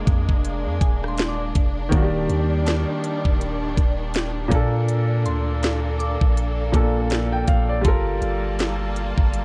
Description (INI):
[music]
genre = contemporary R&B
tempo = 81 BPM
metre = 4/4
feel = swing 58% on 16ths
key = Bb major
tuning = A4 = 440 Hz
[part]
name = clear baby grand piano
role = accompaniment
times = 0.0-9.4 s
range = Bb2 to G5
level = -28 LUFS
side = equal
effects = none
[part]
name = clear studio string section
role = sustained chords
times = 0.0-9.4 s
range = Eb3 to A5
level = -32 LUFS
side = equal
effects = none
[part]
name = long sustained 808-style bass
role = bass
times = 0.0-9.4 s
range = D1 to Bb2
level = -27 LUFS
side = equal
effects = none
[part]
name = mallet-like synth pluck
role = texture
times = 0.0-9.4 s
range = G5 to D6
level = -39 LUFS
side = equal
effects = chorus, analog delay
[part]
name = trap drum kit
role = drums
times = 0.1-9.4 s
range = hi-hat, kick drum, rim click, snare drum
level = -23 LUFS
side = equal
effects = vintage 12-bit sampler grit
[sound]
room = light reverb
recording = dark, warm production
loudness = -22 LUFS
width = mono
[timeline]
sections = 0.0-9.4 A section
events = none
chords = 0.0 Bb7/F; 1.9 Ebmaj7; 4.5 Bbmaj7; 7.8 Gm9